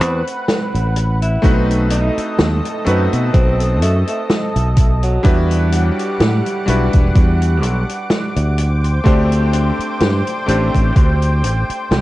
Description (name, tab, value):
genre	vaporwave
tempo	63 BPM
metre	4/4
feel	swing 55% on 16ths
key	unclear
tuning	A4 = 440 Hz
part	breathy alto saxophone	melody	0.0-5.4 s	F#3 to E4	-25 LUFS	equal	tape echo
part	bright electric grand piano	accompaniment	0.0-12.0 s	G3 to C5	-21 LUFS	left 1 dB	wide subtle chorus, analog delay
part	lush unison pad	sustained chords	0.0-12.0 s	G3 to D6	-24 LUFS	equal	chorus
part	fingered electric bass	bass	0.0-12.0 s	E1 to B2	-16 LUFS	equal	none
part	vintage drum kit	drums	0.0-12.0 s	hi-hat, snare drum	-20 LUFS	equal	vintage 12-bit sampler grit
part	electronic kick drum	drums	1.4-11.2 s	none	-13 LUFS	equal	overdrive, vintage 12-bit sampler grit
room	light reverb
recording	echo-heavy mix, cassette tape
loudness	-13 LUFS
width	side -17 dB against mid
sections	0.0-12.0 A section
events	none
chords	0.0 Am69; 1.4 B7b9; 5.2 Em9; 8.6 D7sus4